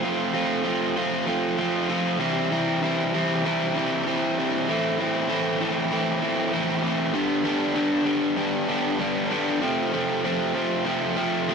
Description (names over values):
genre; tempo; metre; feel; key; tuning
rock; 97 BPM; 4/4; straight; unclear; A4 = 441 Hz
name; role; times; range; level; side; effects
overdriven electric guitar; solo; 0.0-11.5 s; F2 to F4; -22 LUFS; equal; none
room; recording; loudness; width
wet studio reverb, RT60 0.5 s; rough rehearsal-room recording; -22 LUFS; side -5 dB against mid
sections
0.0-11.5 A section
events
none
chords
0.0 F; 2.2 C; 4.7 Am; 7.1 G; 9.6 F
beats
0.35 0.97 1.59 | 2.21 2.82 3.44 4.06 | 4.68 5.29 5.91 6.53 | 7.15 7.76 8.38 9.00 | 9.62 10.23 10.85 11.47